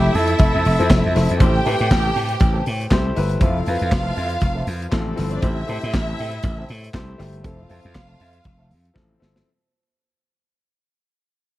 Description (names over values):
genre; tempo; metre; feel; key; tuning
disco; 119 BPM; 4/4; swing 56% on 16ths; unclear; A4 = 438 Hz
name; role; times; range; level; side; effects
clear flugelhorn; melody; 0.0-1.2 s; G4 to A4; -24 LUFS; right 1 dB; tube saturation
clear studio string section; second line; 0.0-9.2 s; F3 to G5; -25 LUFS; right 1 dB; none
electric guitar at the edge of break-up; accompaniment; 0.0-9.4 s; C4 to A4; -32 LUFS; right 4 dB; wah, tube saturation
warm grand piano; accompaniment; 0.0-9.5 s; F3 to C5; -26 LUFS; left 3 dB; none
slap bass; bass; 0.0-9.4 s; F1 to A2; -22 LUFS; equal; none
modern studio drum kit; drums; 0.1-9.5 s; handclaps, hi-hat, kick drum, snare drum; -20 LUFS; equal; none
room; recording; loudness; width
light reverb, studio ambience; vinyl crackle; -17 LUFS; side -16 dB against mid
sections
0.0-1.4 A section; 1.4-9.5 B section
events
fade-out 1.4-9.5; drum fill 9.0-9.5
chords
0.0 Fmaj7; 1.4 Am7; 3.4 Fmaj7; 5.4 Am7; 7.4 Fmaj7